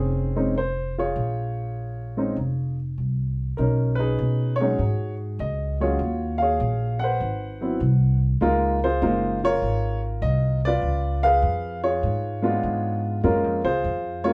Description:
jazz; 99 BPM; 4/4; swing 67% on 8ths; A4 = 440 Hz
warm baby grand piano; melody; 0.0-14.3 s; F#3 to Gb5; -26 LUFS; equal
upright bass; bass; 0.0-14.3 s; F1 to B2; -27 LUFS; equal
moderate studio ambience, RT60 0.5 s; band playing live in one room; -24 LUFS; mono
0.0-3.6 A section; 3.6-14.3 B section
0.0 Bbm9; 3.6 B69; 6.0 Ebm11; 7.2 Ab7#9; 8.4 Db6; 10.8 Db7b9; 13.2 Gbmaj9
0.56 | 1.16 1.76 2.37 2.98 | 3.58 4.18 4.79 5.39 | 6.00 6.60 7.21 7.81 | 8.41 9.02 9.62 10.22 | 10.83 11.43 12.04 12.64 | 13.24 13.85

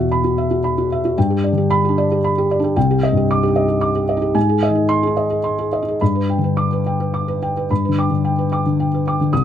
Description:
neoclassical minimalist piano; 112 BPM; 3/4; rubato; G major; A4 = 444 Hz
felt-muted upright piano; solo; 0.0-9.4 s; C2 to Eb6; -15 LUFS; equal
light reverb; close, detailed microphones; -15 LUFS; side -10 dB against mid
0.0-7.7 A section; 7.7-9.4 B section
0.0 Esus2; 1.2 G; 2.8 Cmadd9; 4.4 Ab; 6.0 G
0.10 0.63 | 1.16 1.69 2.23 | 2.76 3.29 3.82 | 4.35 4.89 5.44 | 6.00 6.57 7.14 | 7.70 8.25 8.79 | 9.32

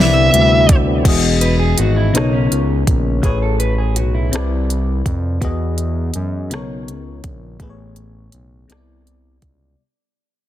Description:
slow six-eight R&B; 55 BPM (dotted quarters); 6/8; straight; A4 = 440 Hz
smooth overdriven lead guitar; melody; 0.0-0.8 s; E5; -16 LUFS; equal; tape echo
FM electric piano; accompaniment; 0.0-9.8 s; A2 to D#5; -20 LUFS; left 4 dB; chorus
percussive tonewheel organ; sustained chords; 0.0-1.0 s; D3 to E4; -25 LUFS; right 4 dB; chorus vibrato, slow rotary speaker
smooth synth bass; bass; 0.0-9.8 s; E1 to F#2; -18 LUFS; right 1 dB
smooth R&B drum kit; drums; 0.3-9.6 s; crash cymbal, hi-hat, kick drum, rim click; -18 LUFS; equal
electric guitar at the edge of break-up; second line; 1.4-4.5 s; C#4 to B4; -23 LUFS; equal; spring reverb
little or no reverb; dense, heavily limited modern master; -13 LUFS; side -12 dB against mid
0.0-1.1 A section; 1.1-9.8 B section
fade-out 1.1-9.8
0.0 Cmaj9; 1.1 Emaj9; 2.1 Bmaj9; 3.2 Amaj9; 4.3 Cmaj9; 5.4 Emaj9; 6.5 Bmaj9; 7.6 Amaj9; 8.7 Cmaj9
| 1.05 2.15 | 3.24 4.33 | 5.42 6.51 | 7.60 8.69

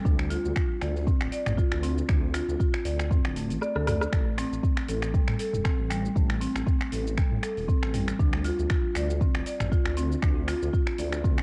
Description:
afro house; 118 BPM; 4/4; swing 55% on 16ths; A4 = 440 Hz
marimba with medium hard mallets; arpeggios; 0.1-11.4 s; G3 to D5; -34 LUFS; equal; sidechain pumping, cassette tape, tape echo
dark detuned saw bass; bass; 0.1-11.4 s; D1 to A2; -33 LUFS; equal; sidechain pumping
deep house drum kit; drums; 0.1-11.4 s; finger snaps, hi-hat, rim click, shaker, toms; -37 LUFS; equal; cassette tape
electronic kick drum; drums; 0.1-11.4 s; -28 LUFS; equal; cassette tape
light reverb; home recording on cassette; -27 LUFS; mono
0.0-11.4 A section
kick drops out 3.6-4.1; drum fill 3.6-4.1
0.1 Dm; 4.1 Am7; 8.2 Dm
| 0.06 0.56 1.07 1.58 | 2.09 2.60 3.11 3.62 | 4.12 4.63 5.14 5.65 | 6.16 6.67 7.17 7.68 | 8.19 8.70 9.21 9.72 | 10.22 10.73 11.24

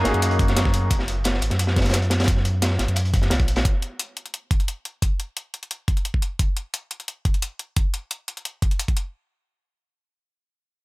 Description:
liquid drum and bass; 175 BPM; 4/4; straight; Gb major; A4 = 440 Hz
bright baby grand piano; accompaniment; 0.0-0.9 s; Bb3 to Ab4; -25 LUFS; equal; tape echo
airy breathy pad; sustained chords; 0.0-0.9 s; Bb4 to Eb6; -33 LUFS; right 1 dB; chorus
sub bass with octave; bass; 0.0-3.6 s; Gb1 to Gb2; -22 LUFS; equal
crunchy breakbeat drum kit; drums; 0.0-3.6 s; hi-hat, snare drum; -25 LUFS; equal; high-pass filter on hats, high-pass filter on snare, high-pass filter on room
downlifter; sound effects; 0.0-0.9 s; -37 LUFS; equal
electronic hi-hat; drums; 0.1-9.0 s; -29 LUFS; left 1 dB
electronic kick drum; drums; 0.4-8.9 s; -21 LUFS; equal; overdrive
little or no reverb; -20 LUFS; side -22 dB against mid
0.0-9.1 A section; 9.1-10.8 B section
0.0 Gb69; 3.6 N.C.
0.22 0.56 | 0.91 1.25 1.59 1.94 | 2.28 2.62 2.96 3.31 | 3.65 3.99 4.34 4.68 | 5.02 5.37 5.71 6.05 | 6.39 6.74 7.08 7.42 | 7.76 8.11 8.45 8.79

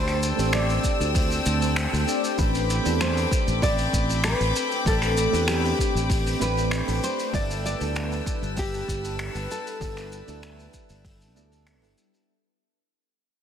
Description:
sunset chillout; 97 BPM; 4/4; straight; A4 = 440 Hz
nylon-string guitar; melody; 0.0-11.9 s; G4 to D5; -30 LUFS; left 1 dB; tape echo
soft electric-piano-like synth keys; accompaniment; 0.0-12.3 s; G3 to D5; -30 LUFS; moving between left 3 dB and right 6 dB; chorus, phaser, auto-pan, ping-pong delay
warm studio string section; sustained chords; 0.0-12.2 s; C4 to E6; -30 LUFS; left 2 dB
sustaining fretless electric bass; bass; 0.0-11.9 s; G1 to E2; -26 LUFS; equal; analog chorus
vintage brush drum kit; drums; 0.1-12.3 s; finger snaps, hi-hat, shaker; -31 LUFS; equal; soft clipping on snare
electronic kick drum; drums; 0.8-11.2 s; -26 LUFS; equal
light reverb, studio reverb; dense, heavily limited modern master; -22 LUFS; side -8 dB against mid
0.0-12.3 A section
fade-out 5.7-12.3
0.0 D7sus4; 2.4 Am11; 7.3 G69
0.53 1.15 1.77 | 2.39 3.01 3.62 4.24 | 4.86 5.48 6.10 6.72 | 7.34 7.95 8.57 9.19 | 9.81 10.43 11.05 11.67

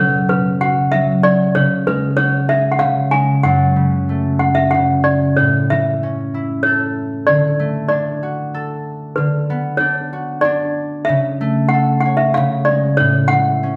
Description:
children's music, lullaby; 95 BPM; 3/4; straight; A4 = 440 Hz
toy piano; melody; 0.0-13.8 s; B4 to G#5; -19 LUFS; equal
concert harp; accompaniment; 0.0-13.8 s; F#2 to C#5; -19 LUFS; equal
wet large studio reverb, RT60 1.3 s; band playing live in one room; -16 LUFS; mono
0.0-5.4 A section; 5.4-13.8 B section
0.0 Bsus2; 1.6 C#sus4; 3.4 F#m; 5.4 A; 7.3 D; 9.2 Bmadd9/D; 11.1 A6/C#; 12.4 C#; 13.0 A
0.30 0.93 | 1.55 2.18 2.81 | 3.44 4.08 4.73 | 5.38 6.03 6.66 | 7.29 7.91 8.54 | 9.17 9.81 10.44 | 11.08 11.72 12.36 | 13.00 13.63

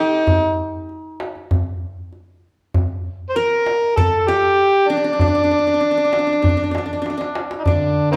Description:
Arabic maqam ensemble; 98 BPM; 4/4; straight; D maqam hijaz; A4 = 441 Hz
overdriven harmonica; melody; 0.0-8.2 s; Bb3+31c to C5; -19 LUFS; equal
qanun; second line; 0.0-8.2 s; D4 to Bb4; -25 LUFS; equal
darbuka; percussion; 0.3-7.8 s; -24 LUFS; equal
mellow duduk; drone; 7.7-8.2 s; D3; -24 LUFS; equal
wet large studio reverb, RT60 1.2 s; band playing live in one room; -18 LUFS; mono
0.0-7.7 A section
drum fill 7.0-7.7
| 0.28 0.89 1.51 2.12 | 2.74 3.35 3.97 4.58 | 5.20 5.81 6.43 7.04 | 7.66

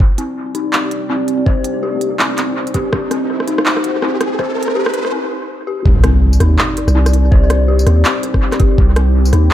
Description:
half-time drum and bass; 164 BPM; 4/4; swing 60% on 16ths, half-time; C minor; A4 = 440 Hz
dark analog pad; sustained chords; 0.0-9.5 s; C4 to D5; -23 LUFS; left 1 dB; chorus, sidechain pumping
electronic kick drum; drums; 0.0-8.9 s; -12 LUFS; equal
riser and impact; sound effects; 0.0-7.3 s; -22 LUFS; equal
dark detuned synth bell; arpeggios; 0.2-9.5 s; C4 to C5; -20 LUFS; left 2 dB; chorus, analog delay
organic electronic drum kit; drums; 0.2-9.5 s; handclaps, hi-hat, rim click, tambourine; -20 LUFS; equal; overdrive, dub echo
long sustained 808-style bass; bass; 5.9-9.5 s; C2 to Eb2; -11 LUFS; equal; tube saturation
light reverb, digital ambience; echo-heavy mix, high-pass filter; -12 LUFS; side -12 dB against mid
0.0-5.9 A section; 5.9-9.5 B section
build-up 0.0-5.9; riser 0.0-5.1; break 5.1-5.9; drop 5.9-9.5; impact 5.9-7.3
0.0 Cm
| 0.00 0.37 0.73 1.10 | 1.46 1.83 2.19 2.56 | 2.93 3.29 3.66 4.02 | 4.39 4.76 5.12 5.49 | 5.85 6.22 6.58 6.95 | 7.32 7.68 8.05 8.41 | 8.78 9.15 9.51

